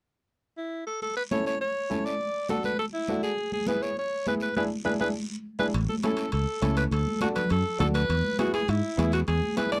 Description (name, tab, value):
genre	latin, cumbia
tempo	203 BPM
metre	4/4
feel	straight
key	A major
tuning	A4 = 439 Hz
part	bright alto saxophone	melody	0.6-9.8 s	E4 to D5	-31 LUFS	equal	none
part	congas	percussion	1.0-9.8 s	none	-34 LUFS	equal	none
part	guiro	percussion	1.0-9.8 s	none	-48 LUFS	equal	none
part	bright upright piano	accompaniment	1.3-9.8 s	B3 to A4	-34 LUFS	equal	none
part	fingered electric bass	bass	5.7-9.4 s	A1 to G#2	-28 LUFS	equal	none
part	timbales	percussion	5.7-9.8 s	none	-42 LUFS	equal	none
room	little or no reverb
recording	dry, close 1970s-style studio recording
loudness	-28 LUFS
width	mono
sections	0.0-1.0 A section; 1.0-5.7 B section; 5.7-9.8 C section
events	band accent 4.6-5.7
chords	0.0 N.C.; 1.0 A; 2.2 D; 3.4 E7; 5.7 A; 6.9 D; 8.1 E